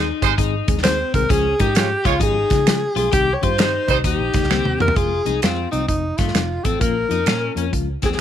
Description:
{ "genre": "uptempo 1960s-style soul", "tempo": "131 BPM", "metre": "4/4", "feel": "swing 65% on 8ths", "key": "F minor", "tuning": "A4 = 437 Hz", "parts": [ { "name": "warm horn section", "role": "second line", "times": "0.0-4.0 s", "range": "G3 to Db5", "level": "-24 LUFS", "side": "right 14 dB", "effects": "none" }, { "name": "reed electric piano", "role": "accompaniment", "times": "0.0-8.2 s", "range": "Eb3 to Bb4", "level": "-27 LUFS", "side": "left 12 dB", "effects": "fast tremolo" }, { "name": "electric guitar at the edge of break-up", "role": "riff", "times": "0.0-8.2 s", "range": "A3 to G4", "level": "-26 LUFS", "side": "left 13 dB", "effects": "analog chorus" }, { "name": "vintage muted fingered electric bass", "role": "bass", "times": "0.0-8.2 s", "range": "F1 to Db3", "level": "-24 LUFS", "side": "right 1 dB", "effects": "none" }, { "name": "natural country drum kit", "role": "drums", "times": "0.2-8.2 s", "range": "hi-hat, kick drum, snare drum, toms", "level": "-20 LUFS", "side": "right 1 dB", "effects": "none" }, { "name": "warm alto saxophone", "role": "melody", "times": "0.8-8.2 s", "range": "Eb4 to Db5", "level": "-21 LUFS", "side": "equal", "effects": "none" }, { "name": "finger snaps", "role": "percussion", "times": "0.8-8.2 s", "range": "none", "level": "-28 LUFS", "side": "right 14 dB", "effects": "none" } ], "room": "light reverb, small room ambience", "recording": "1960s-style stereo with parts hard left and right", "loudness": "-16 LUFS", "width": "side -10 dB against mid", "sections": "0.0-5.0 A section; 5.0-8.2 B section", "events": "drum fill 4.5-5.0", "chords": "0.0 Ab; 1.3 Db; 3.1 Cm; 4.0 Eb; 5.0 Fm; 5.9 F7; 6.8 Bbm" }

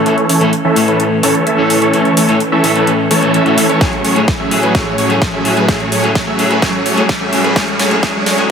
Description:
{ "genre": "EDM, festival progressive house", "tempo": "128 BPM", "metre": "4/4", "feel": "straight", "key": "A major", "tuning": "A4 = 440 Hz", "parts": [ { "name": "electric guitar at the edge of break-up", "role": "accompaniment", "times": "0.0-8.5 s", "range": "A2 to A4", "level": "-17 LUFS", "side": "left 2 dB", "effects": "sidechain pumping, dub echo" }, { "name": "lush unison pad", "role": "sustained chords", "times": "0.0-8.5 s", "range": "A2 to D5", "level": "-21 LUFS", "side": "equal", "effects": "chorus, sidechain pumping" }, { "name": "big supersaw lead", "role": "riff", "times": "0.0-8.4 s", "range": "E3 to E5", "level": "-14 LUFS", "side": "right 1 dB", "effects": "sidechain pumping, low-pass filter, dub echo" }, { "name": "riser", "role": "sound effects", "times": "0.6-8.5 s", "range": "none", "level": "-24 LUFS", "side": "equal", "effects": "none" }, { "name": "big-room dance drum kit", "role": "drums", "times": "0.1-8.5 s", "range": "hi-hat, snare drum", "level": "-20 LUFS", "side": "equal", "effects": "high-pass filter on hats, high-pass filter on snare, high-pass filter on room" }, { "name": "electronic kick drum", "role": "drums", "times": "3.8-8.1 s", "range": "none", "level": "-17 LUFS", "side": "equal", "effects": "overdrive" } ], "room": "moderate huge ambient reverb, RT60 6.8 s", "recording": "high-pass filter", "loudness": "-10 LUFS", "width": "side -6 dB against mid", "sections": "0.0-8.5 A section", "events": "build-up 0.0-8.5; filter sweep on supersaw synth 0.0-8.5; filter sweep on analog synth pad 0.0-8.5; filter sweep 0.0-8.5; drum fill 3.8-8.5", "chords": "0.0 A; 3.8 F#madd9/A; 7.6 D" }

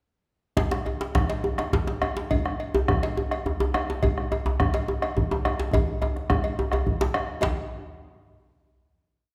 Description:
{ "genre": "west african traditional, West African drum ensemble", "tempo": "141 BPM (dotted quarters)", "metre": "12/8", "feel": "straight", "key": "none", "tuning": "none", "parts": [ { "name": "bombo", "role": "percussion", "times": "0.6-7.6 s", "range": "none", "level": "-30 LUFS", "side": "equal", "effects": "none" }, { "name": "cowbell", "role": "percussion", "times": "0.6-7.5 s", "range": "none", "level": "-36 LUFS", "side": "equal", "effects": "none" }, { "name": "djembe", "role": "percussion", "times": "0.6-7.5 s", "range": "none", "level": "-34 LUFS", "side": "equal", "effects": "none" }, { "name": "djembe", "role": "percussion", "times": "0.6-7.6 s", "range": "none", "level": "-30 LUFS", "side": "equal", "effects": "none" } ], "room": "wet recital hall reverb, RT60 1.7 s", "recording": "none", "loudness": "-26 LUFS", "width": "mono", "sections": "0.6-7.4 A section; 7.4-9.1 final hit", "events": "drum fill 5.7-7.4", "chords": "none" }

